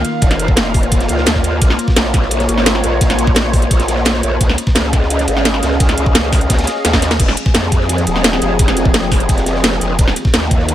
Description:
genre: dark technical drum and bass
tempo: 172 BPM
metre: 4/4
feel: straight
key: F minor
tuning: A4 = 442 Hz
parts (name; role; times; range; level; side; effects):
- sweeping resonant pad; sustained chords; 0.0-10.7 s; Eb3 to F5; -20 LUFS; left 1 dB; chorus, sidechain pumping
- growl bass; bass; 0.0-10.7 s; Eb1 to F2; -17 LUFS; equal; chorus, overdrive
- crunchy breakbeat drum kit; drums; 0.0-10.7 s; ride cymbal, snare drum; -26 LUFS; equal; high-pass filter on cymbals, high-pass filter on snare, high-pass filter on room
- drum and bass drum kit; drums; 0.0-10.7 s; crash cymbal, hi-hat, snare drum; -17 LUFS; equal; none
- electronic kick drum; drums; 0.2-10.6 s; none; -14 LUFS; equal; none
room: digital ambience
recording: none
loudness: -11 LUFS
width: side -12 dB against mid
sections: 0.0-10.7 A section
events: drum fill 6.8-7.2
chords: 0.0 Ebsus2; 1.6 Bbm; 4.4 Db; 7.2 Fm; 10.0 Ebsus2

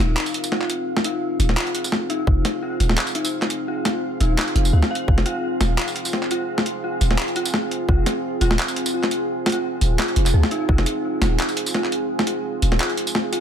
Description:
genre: half-time drum and bass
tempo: 171 BPM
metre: 4/4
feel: swing 54% on 16ths, half-time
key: F minor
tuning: A4 = 441 Hz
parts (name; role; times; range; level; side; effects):
- deep dark ambient pad; sustained chords; 0.0-13.4 s; C4 to F5; -26 LUFS; right 2 dB; chorus, built-in reverb, sidechain pumping
- dark detuned synth bell; arpeggios; 0.0-13.4 s; Eb4 to F5; -27 LUFS; left 3 dB; chorus, tremolo, dub echo
- long sustained 808-style bass; bass; 0.0-12.8 s; Eb1 to D2; -18 LUFS; equal; none
- boom bap sampler-style drum kit; drums; 0.2-13.4 s; handclaps, hi-hat, snare drum, tambourine; -23 LUFS; equal; overdrive
- electronic kick drum; drums; 2.3, 5.1-5.2, 7.9-8.0, 10.7-10.8 s; none; -17 LUFS; equal; none
room: light reverb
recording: none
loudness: -19 LUFS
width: side -8 dB against mid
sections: 0.0-13.4 A section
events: none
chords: 0.0 Fm

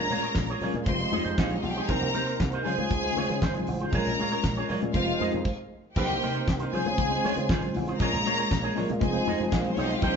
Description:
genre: disco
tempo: 118 BPM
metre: 4/4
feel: straight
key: Bb dorian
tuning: A4 = 440 Hz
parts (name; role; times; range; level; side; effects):
- clear studio string section; second line; 0.0-10.2 s; Ab3 to C6; -30 LUFS; left 1 dB; none
- electric guitar with an envelope filter; accompaniment; 0.0-10.2 s; Eb4 to Eb5; -34 LUFS; right 4 dB; none
- mellow tine electric piano; accompaniment; 0.0-10.2 s; Ab3 to Eb5; -31 LUFS; left 1 dB; medium stereo tremolo
- percussive tonewheel organ; sustained chords; 0.0-10.2 s; C3 to C5; -37 LUFS; right 2 dB; chorus vibrato, fast rotary speaker
- slap bass with an envelope filter; bass; 0.0-10.1 s; F1 to Db3; -33 LUFS; equal; none
- damped 70s drum kit; drums; 0.1-10.2 s; crash cymbal, handclaps, hi-hat, kick drum, snare drum; -29 LUFS; equal; none
- congas; percussion; 0.1-10.1 s; none; -36 LUFS; left 4 dB; none
room: wet large studio reverb, RT60 1.3 s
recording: band playing live in one room, nothing above 7.7 kHz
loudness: -24 LUFS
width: side -6 dB against mid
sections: 0.0-6.0 A section; 6.0-10.2 A section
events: stop 5.5-6.0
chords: 0.0 Bbm7; 0.9 Fm7; 1.9 Cm7; 2.7 Dbmaj7; 3.9 Bbm7; 4.9 Fm7; 5.5 N.C.; 6.0 Cm7; 6.7 Dbmaj7; 8.0 Bbm7; 9.0 Fm7

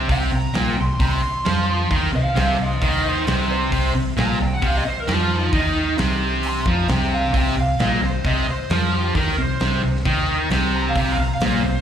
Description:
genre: blues rock power trio and southern rock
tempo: 133 BPM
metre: 4/4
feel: straight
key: C minor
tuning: A4 = 440 Hz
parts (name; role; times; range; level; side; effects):
- distorted electric guitar; riff; 0.0-11.8 s; Bb2 to F3; -21 LUFS; equal; distortion, slapback echo
- vintage muted fingered electric bass; bass; 0.0-11.8 s; Bb1 to F2; -23 LUFS; equal; none
- lead guitar through a small cranked amp; melody; 0.1-11.8 s; Eb4 to C6; -26 LUFS; right 1 dB; wah, overdrive, slapback echo
- big rock drum kit; drums; 0.1-11.5 s; hi-hat, kick drum, snare drum; -25 LUFS; equal; none
room: light reverb, studio ambience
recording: live gig heard through the venue's PA, club reverb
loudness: -18 LUFS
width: side -9 dB against mid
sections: 0.0-11.8 A section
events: lead electric guitar solo 0.0-11.8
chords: 0.0 Cm

